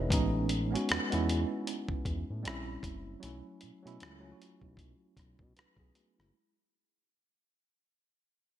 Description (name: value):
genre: R&B, neo-soul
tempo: 77 BPM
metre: 4/4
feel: swing 59% on 16ths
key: unclear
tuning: A4 = 442 Hz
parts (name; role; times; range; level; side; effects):
- tine electric piano; accompaniment; 0.0-6.5 s; F#3 to F#5; -36 LUFS; right 2 dB; medium stereo tremolo
- smooth gliding synth bass; bass; 0.0-6.3 s; F#1 to B2; -36 LUFS; equal; none
- dusty soul sampler-style drum kit; drums; 0.1-6.3 s; hi-hat, kick drum, rim click; -34 LUFS; equal; none
room: light reverb, digital ambience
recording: bright 1980s-style digital production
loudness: -30 LUFS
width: side -11 dB against mid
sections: 0.0-6.3 A section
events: fade-out 0.0-6.3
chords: 0.1 Amaj9#11; 2.4 A#dim7; 3.2 B7sus4